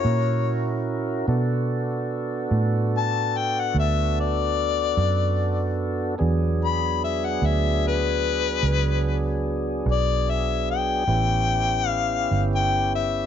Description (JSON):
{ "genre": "slow blues", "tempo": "49 BPM (dotted quarters)", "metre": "12/8", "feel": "straight", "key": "unclear", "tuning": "A4 = 440 Hz", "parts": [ { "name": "clear harmonica", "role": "melody", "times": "0.0-13.3 s", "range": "B4 to B5", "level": "-24 LUFS", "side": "left 9 dB", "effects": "none" }, { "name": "tonewheel organ", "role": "sustained chords", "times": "0.0-13.3 s", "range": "F#3 to A#4", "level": "-27 LUFS", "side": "right 2 dB", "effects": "slow rotary speaker" }, { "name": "vintage muted fingered electric bass", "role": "bass", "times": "0.0-13.3 s", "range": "G1 to B2", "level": "-24 LUFS", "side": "right 2 dB", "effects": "none" } ], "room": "light reverb, small room ambience", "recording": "nothing above 7.5 kHz", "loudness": "-21 LUFS", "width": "side -9 dB against mid", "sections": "0.0-13.3 A section", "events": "none", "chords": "0.0 F#7; 1.3 Bm7; 6.2 E9; 11.1 A9", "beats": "0.05 | 1.28 2.51 3.74 4.96 | 6.19 7.42 8.64 9.86 | 11.08 12.30" }